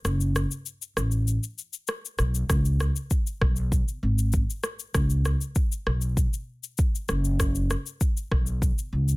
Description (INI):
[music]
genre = afrobeats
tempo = 98 BPM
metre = 4/4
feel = straight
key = unclear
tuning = A4 = 440 Hz
[part]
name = upright bass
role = bass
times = 0.0-9.2 s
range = F#1 to C#2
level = -24 LUFS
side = equal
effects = none
[part]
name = afro-pop drum kit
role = drums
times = 0.1-9.2 s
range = kick drum, rim click, shaker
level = -26 LUFS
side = equal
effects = soft clipping on snare
[sound]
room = little or no reverb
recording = dense, heavily limited modern master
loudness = -24 LUFS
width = side -23 dB against mid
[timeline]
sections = 0.0-9.2 A section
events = break 0.0-2.5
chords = none